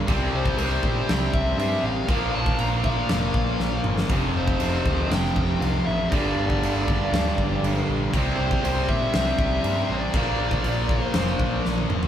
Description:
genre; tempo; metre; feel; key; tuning
hard rock; 119 BPM; 4/4; straight; unclear; A4 = 440 Hz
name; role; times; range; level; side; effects
cranked stack guitar; riff; 0.0-12.1 s; F2 to C4; -27 LUFS; right 3 dB; overdrive
distorted electric guitar; riff; 0.0-12.1 s; F2 to E4; -33 LUFS; equal; none
high-gain distorted guitar; riff; 0.0-12.1 s; F2 to C4; -30 LUFS; left 4 dB; distortion
overdriven picked electric bass; bass; 0.1-12.1 s; E1 to Bb2; -28 LUFS; equal; none
huge arena drum kit; drums; 0.1-12.1 s; crash cymbal, kick drum, snare drum, toms; -26 LUFS; equal; none
smooth overdriven lead guitar; melody; 0.4-11.6 s; C5 to Bb5; -29 LUFS; left 3 dB; none
room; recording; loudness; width
wet small room reverb, RT60 0.5 s; band playing live in one room; -21 LUFS; side -10 dB against mid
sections
0.0-12.1 A section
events
drum fill 3.6-4.1, 11.7-12.1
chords
0.1 C; 2.1 Bb; 4.1 F; 6.1 Gm; 8.1 C; 10.1 Bb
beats
| 0.08 0.58 1.09 1.59 | 2.09 2.59 3.10 3.60 | 4.10 4.60 5.11 5.61 | 6.11 6.62 7.12 7.62 | 8.13 8.63 9.14 9.64 | 10.14 10.65 11.15 11.65

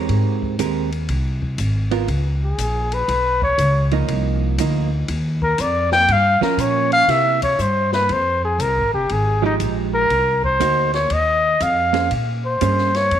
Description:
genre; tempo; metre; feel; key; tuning
jazz, small-group swing and bop; 120 BPM; 4/4; swing 66% on 8ths; C minor, F minor from 8.1 s; A4 = 441 Hz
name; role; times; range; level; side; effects
hollow-body jazz guitar; accompaniment; 0.0-12.9 s; F3 to C5; -23 LUFS; right 12 dB; none
upright bass; bass; 0.0-13.2 s; F1 to C3; -21 LUFS; equal; none
open jazz drum kit; drums; 0.1-13.2 s; hi-hat, kick drum, ride cymbal, snare drum; -31 LUFS; left 4 dB; none
breathy trumpet; melody; 2.4-13.2 s; Eb4 to G5; -17 LUFS; left 1 dB; none
room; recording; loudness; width
moderate echo chamber reverb, RT60 1.4 s, small room ambience; 1960s-style stereo; -16 LUFS; side -10 dB against mid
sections
0.0-8.1 A section; 8.1-13.2 A section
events
trumpet solo 0.0-13.2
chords
0.1 Abmaj9; 2.1 Db7(no3); 4.1 Cm11; 6.1 Gm7b5; 7.1 C7; 8.1 Fm9; 10.1 Cm7b5; 11.1 Eb13sus4; 12.1 Bbm9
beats
| 0.09 0.59 1.09 1.59 | 2.09 2.59 3.08 3.58 | 4.08 4.58 5.09 5.59 | 6.09 6.59 7.09 7.59 | 8.09 8.59 9.09 9.60 | 10.10 10.60 11.10 11.60 | 12.11 12.61 13.11

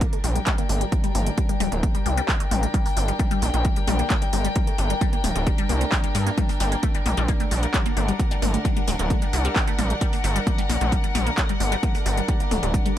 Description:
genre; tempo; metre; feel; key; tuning
driving peak-time techno; 132 BPM; 4/4; straight; G harmonic minor; A4 = 442 Hz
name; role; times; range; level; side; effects
resonant blip pluck; riff; 0.0-12.9 s; G3 to Bb3; -29 LUFS; left 3 dB; phaser, sidechain pumping, dub echo
gritty driven synth bass; bass; 0.0-12.8 s; D1 to G2; -24 LUFS; equal; sidechain pumping
electronic kick drum; drums; 0.0-12.8 s; none; -23 LUFS; equal; overdrive
techno drum kit; drums; 0.0-12.9 s; handclaps, hi-hat, toms; -29 LUFS; equal; overdrive, sidechain pumping on hats, sidechain pumping on toms, sidechain pumping on cymbals
impact; sound effects; 0.2-0.9 s; none; barely audible; none; none
warm studio string section; texture; 0.0-13.0 s; D4 to G5; -29 LUFS; left 2 dB; sidechain pumping
room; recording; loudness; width
little or no reverb; none; -20 LUFS; side -11 dB against mid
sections
0.0-13.0 A section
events
impact 0.0-0.9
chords
0.0 Gm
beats
0.01 0.47 | 0.92 1.38 1.83 2.29 | 2.74 3.19 3.65 4.10 | 4.56 5.01 5.47 5.92 | 6.38 6.83 7.29 7.74 | 8.19 8.65 9.10 9.56 | 10.01 10.47 10.92 11.38 | 11.83 12.29 12.74

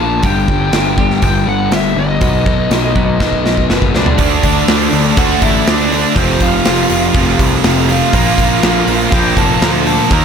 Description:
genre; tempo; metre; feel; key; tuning
quiet-loud alternative rock; 122 BPM; 4/4; straight; unclear; A4 = 440 Hz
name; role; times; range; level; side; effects
bluesy overdriven lead guitar; melody; 0.0-10.2 s; C4 to Bb5; -18 LUFS; right 1 dB; distortion, analog delay
twelve-string electric guitar; arpeggios; 0.0-4.2 s; G2 to B3; -22 LUFS; left 1 dB; analog delay
thick fuzz guitar; riff; 0.0-10.2 s; F2 to Eb4; -17 LUFS; left 11 dB; distortion
fuzz picked electric bass; bass; 0.0-10.2 s; F1 to Eb2; -18 LUFS; equal; overdrive
big rock drum kit; drums; 0.2-10.2 s; hi-hat, kick drum, snare drum, toms; -15 LUFS; equal; none
heavy high-gain guitar; riff; 4.2-10.2 s; F2 to Eb4; -16 LUFS; right 16 dB; distortion
room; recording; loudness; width
light reverb; none; -10 LUFS; side -7 dB against mid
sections
0.0-4.2 A section; 4.2-10.2 B section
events
drum fill 3.2-4.2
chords
0.2 G5; 2.2 B; 4.2 D; 6.2 F5; 8.1 Bb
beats
| 0.24 0.74 1.23 1.73 | 2.22 2.71 3.21 3.70 | 4.19 4.69 5.18 5.67 | 6.17 6.66 7.15 7.65 | 8.14 8.63 9.12 9.62 | 10.11

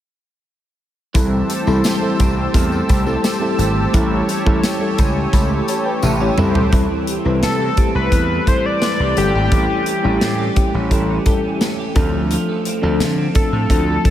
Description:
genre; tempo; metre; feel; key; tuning
1980s-style pop; 86 BPM; 4/4; straight; C major; A4 = 440 Hz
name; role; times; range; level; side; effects
FM electric piano with auto-pan; accompaniment; 1.1-14.1 s; F3 to B5; -21 LUFS; left 2 dB; none
brassy analog pad; sustained chords; 1.1-6.7 s; G4 to E6; -25 LUFS; equal; chorus
twelve-string electric guitar; riff; 1.1-14.1 s; E3 to G4; -25 LUFS; right 5 dB; ensemble chorus, diffuse ambient delay
gritty slap bass; bass; 1.1-14.0 s; G1 to D3; -20 LUFS; equal; overdrive
modern studio drum kit; drums; 1.1-14.1 s; hi-hat, kick drum, snare drum, toms; -19 LUFS; equal; none
tambourine; percussion; 1.1-6.5 s; none; -37 LUFS; left 4 dB; none
octave-doubled lead; melody; 7.4-14.1 s; G4 to D5; -22 LUFS; left 2 dB; chorus, diffuse ambient delay
room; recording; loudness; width
moderate huge ambient reverb, RT60 8.2 s; dreamy mix soaked in reverb; -15 LUFS; side -11 dB against mid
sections
1.1-6.7 A section; 6.7-14.1 B section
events
drum fill 6.0-6.7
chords
1.1 C6; 3.9 A7; 6.4 C6; 9.5 A7; 12.0 Dm7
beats
| 1.15 1.84 2.54 3.24 | 3.94 4.63 5.33 6.03 | 6.73 7.42 8.12 8.82 | 9.52 10.22 10.91 11.61 | 12.31 13.01 13.70

